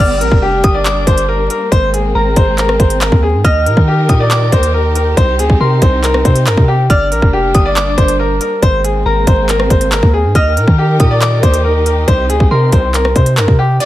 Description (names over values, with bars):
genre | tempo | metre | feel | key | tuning
hip hop, drill | 139 BPM | 4/4 | half-time | G phrygian | A4 = 437 Hz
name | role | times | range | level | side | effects
clear concert grand piano | melody | 0.0-13.9 s | G4 to Eb5 | -15 LUFS | equal | none
soft synth bell | second line | 0.0-13.3 s | Bb5 to F6 | -21 LUFS | left 2 dB | chorus, digital delay
warm symphonic string section | sustained chords | 0.0-13.8 s | C3 to Bb4 | -21 LUFS | right 1 dB | none
long sustained 808-style bass | bass | 0.0-13.8 s | F1 to Eb3 | -14 LUFS | equal | none
drill drum kit | drums | 0.2-13.9 s | handclaps, hi-hat, kick drum, rim click | -12 LUFS | equal | none
downlifter | sound effects | 13.8-13.9 s | none | -24 LUFS | equal | none
room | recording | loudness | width
digital ambience | vinyl crackle | -9 LUFS | side -14 dB against mid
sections
0.0-13.8 A section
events
none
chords
0.0 Gm; 1.7 Abadd9; 3.4 Eb; 5.2 Cm; 6.9 Gm; 8.6 Abadd9; 10.4 Eb; 12.1 Cm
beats
0.42 0.85 1.29 | 1.72 2.15 2.58 3.01 | 3.44 3.88 4.31 4.74 | 5.17 5.60 6.04 6.47 | 6.90 7.33 7.76 8.19 | 8.62 9.06 9.49 9.92 | 10.35 10.78 11.21 11.65 | 12.08 12.51 12.94 13.37 | 13.80